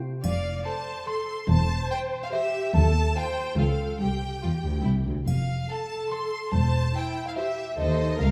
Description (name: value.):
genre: cinematic, playful, whimsical film cue.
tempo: 144 BPM.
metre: 3/4.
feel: straight.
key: F major.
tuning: A4 = 440 Hz.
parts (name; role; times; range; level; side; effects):
celesta; melody; 0.2-8.3 s; Eb5 to C6; -36 LUFS; equal; none.
rich chamber violin section; second line; 0.2-8.3 s; Eb5 to C6; -37 LUFS; equal; none.
warm studio viola section; accompaniment; 0.2-8.3 s; E4 to D5; -35 LUFS; equal; none.
warm chamber cello section; bass; 0.2-8.3 s; C2 to F2; -30 LUFS; equal; none.
warm chamber double bass section; bass; 0.2-8.3 s; E1 to Eb2; -29 LUFS; equal; none.
triangle; percussion; 0.2-1.0, 5.3-6.1 s; none; -51 LUFS; equal; none.
rich chamber violin section; melody; 0.6-8.3 s; E4 to C5; -42 LUFS; equal; none.
room: moderate scoring stage reverb, RT60 2.0 s.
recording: none.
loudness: -27 LUFS.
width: mono.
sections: 0.2-8.3 A section.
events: none.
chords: 0.2 F; 1.5 C/E; 2.7 F7/Eb (rootless); 3.6 Dbaug; 4.0 C5; 5.3 F; 6.5 C/E; 7.8 Adim/Eb.